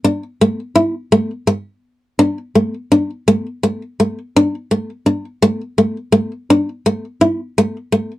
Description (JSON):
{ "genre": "highlife", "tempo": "111 BPM (dotted quarters)", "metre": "12/8", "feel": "straight", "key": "unclear", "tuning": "A4 = 440 Hz", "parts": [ { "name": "nylon-string guitar", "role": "solo", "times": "0.0-8.1 s", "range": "A3 to E4", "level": "-14 LUFS", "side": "equal", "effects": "none" } ], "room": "light reverb", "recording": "dry, close 1970s-style studio recording", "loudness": "-15 LUFS", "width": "side -15 dB against mid", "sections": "0.0-6.5 A section; 6.5-8.2 B section", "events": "none", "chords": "none" }